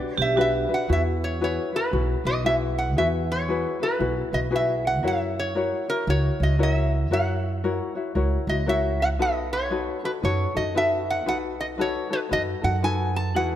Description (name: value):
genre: Hawaiian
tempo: 116 BPM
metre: 4/4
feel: swing 62% on 8ths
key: E major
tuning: A4 = 442 Hz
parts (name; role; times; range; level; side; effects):
- metal-body resonator slide guitar; melody; 0.0-13.6 s; A#4 to A5; -26 LUFS; right 1 dB; none
- tenor ukulele; accompaniment; 0.0-13.6 s; D4 to C#5; -27 LUFS; left 5 dB; none
- vibraphone with hard mallets; second line; 0.2-0.9 s; F#4 to G4; -27 LUFS; right 6 dB; none
- upright bass; bass; 0.2-13.6 s; B1 to F#2; -26 LUFS; right 1 dB; none
room: moderate concert hall reverb, RT60 2.3 s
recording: none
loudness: -22 LUFS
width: side -11 dB against mid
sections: 0.9-13.6 A section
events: none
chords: 0.0 Em9; 0.9 Eadd9; 5.0 F#7; 9.2 B7